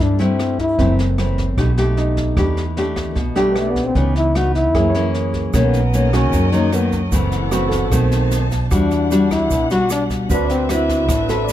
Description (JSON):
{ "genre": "bossa nova", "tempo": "151 BPM", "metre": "4/4", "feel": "straight", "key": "unclear", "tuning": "A4 = 436 Hz", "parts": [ { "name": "warm trombone", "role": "melody", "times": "0.0-1.0, 3.4-11.3 s", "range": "G3 to F#4", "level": "-20 LUFS", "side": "left 2 dB", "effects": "none" }, { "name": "nylon-string guitar", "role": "accompaniment", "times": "0.0-11.5 s", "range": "F#2 to B4", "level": "-20 LUFS", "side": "left 2 dB", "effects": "none" }, { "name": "upright bass", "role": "bass", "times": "0.0-11.5 s", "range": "F#1 to G2", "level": "-20 LUFS", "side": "right 1 dB", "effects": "none" }, { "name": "jazz brush drum kit", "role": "drums", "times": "0.0-11.5 s", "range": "kick drum, rim click, snare drum", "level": "-24 LUFS", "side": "right 1 dB", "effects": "none" }, { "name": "clear grand piano", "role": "accompaniment", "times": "0.8-11.5 s", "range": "C4 to D5", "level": "-26 LUFS", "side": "right 3 dB", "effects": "none" }, { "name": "warm chamber string section", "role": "sustained chords", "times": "5.5-11.5 s", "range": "C4 to A5", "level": "-28 LUFS", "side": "equal", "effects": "none" }, { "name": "egg shaker", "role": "percussion", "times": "5.5-11.5 s", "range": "none", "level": "-33 LUFS", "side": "right 10 dB", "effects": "none" } ], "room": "little or no reverb", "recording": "dark, warm production", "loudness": "-15 LUFS", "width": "side -12 dB against mid", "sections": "0.0-11.5 A section", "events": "trombone solo 0.0-11.5", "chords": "0.0 C6; 0.8 F#m7b5; 1.6 B7b13; 2.4 Em7; 4.0 C#m9; 4.7 F#7; 5.5 Bmaj9; 7.1 F#m7b5; 7.9 B7b9; 8.7 Em9; 10.3 D13" }